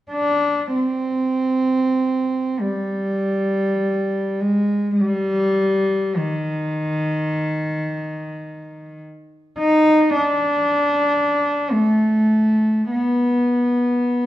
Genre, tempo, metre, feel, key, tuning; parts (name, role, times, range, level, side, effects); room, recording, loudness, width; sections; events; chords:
classical, free, expressive piece for unaccompanied cello; free time; A4 = 436 Hz
warm cello; solo; 0.1-14.3 s; Eb3 to Eb4; -18 LUFS; equal
wet recital hall reverb, RT60 1.2 s; dark, warm production; -17 LUFS; side -14 dB against mid
0.1-14.3 A section